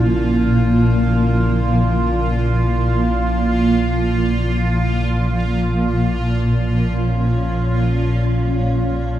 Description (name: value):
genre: ambient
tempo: free time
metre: none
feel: none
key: Bb minor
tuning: A4 = 440 Hz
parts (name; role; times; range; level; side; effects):
- granular cloud pad; sustained chords; 0.0-9.2 s; Bb2 to Db4; -19 LUFS; right 1 dB; built-in reverb
- bronze singing bowl; arpeggios; 0.0-5.6 s; Db3 to E4; -28 LUFS; right 2 dB; analog delay
- deep rumbling drone; drone; 0.0-9.2 s; Bb1 to Bb2; -19 LUFS; equal; built-in reverb, wide subtle chorus
- bubbling stepped-filter texture; texture; 0.0-9.2 s; F4; -26 LUFS; right 1 dB; chorus, built-in reverb
room: moderate plate reverb, RT60 3.2 s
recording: echo-heavy mix, studio ambience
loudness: -15 LUFS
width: side -12 dB against mid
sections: 0.0-9.2 A section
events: filter sweep on synth drone 0.0-9.2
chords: 0.0 Bb5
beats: free time